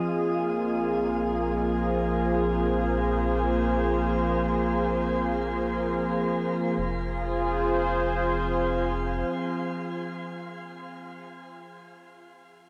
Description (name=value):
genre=ambient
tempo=free time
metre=none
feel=none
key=F minor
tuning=A4 = 436 Hz
part: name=warm analog pad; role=sustained chords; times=0.0-10.9 s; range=F3 to Eb5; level=-29 LUFS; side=equal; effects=chorus
part: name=round analog bass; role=bass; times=0.0-9.2 s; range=F1 to Bb1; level=-35 LUFS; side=equal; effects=none
part: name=analog drone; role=drone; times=0.0-10.9 s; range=F3 to C4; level=-36 LUFS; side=equal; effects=chorus
room=wet shimmer reverb, RT60 8.1 s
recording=dark, warm production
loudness=-27 LUFS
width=mono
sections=0.0-6.8 A section; 6.8-10.1 B section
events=filter sweep on analog synth pad 0.0-6.8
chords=0.1 Bb5; 6.8 Fm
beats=free time